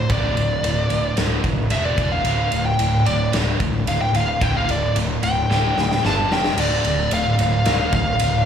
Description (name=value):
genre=hard rock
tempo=111 BPM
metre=4/4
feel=straight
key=D minor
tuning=A4 = 440 Hz
part: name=high-gain lead guitar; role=melody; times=0.0-8.5 s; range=D5 to A5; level=-22 LUFS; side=left 1 dB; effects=distortion, slapback echo, digital delay
part: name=heavy high-gain guitar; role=riff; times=0.0-8.4 s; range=D2 to G3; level=-26 LUFS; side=right 6 dB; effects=distortion, slapback echo
part: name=tight distorted guitar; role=riff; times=0.0-8.4 s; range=D2 to G3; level=-28 LUFS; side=left 8 dB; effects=distortion
part: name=fuzz picked electric bass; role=bass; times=0.0-8.4 s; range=D1 to G1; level=-22 LUFS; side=equal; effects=overdrive
part: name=big rock drum kit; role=drums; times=0.1-8.3 s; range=crash cymbal, kick drum, ride cymbal, snare drum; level=-24 LUFS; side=equal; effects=none
room=light reverb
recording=live gig heard through the venue's PA, club reverb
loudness=-17 LUFS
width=side -8 dB against mid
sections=0.0-8.5 A section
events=lead electric guitar solo 0.0-8.5; drum fill 5.5-6.6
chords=0.0 Dm; 1.7 E5; 2.3 D5; 6.0 G5; 6.3 F5; 6.6 Dm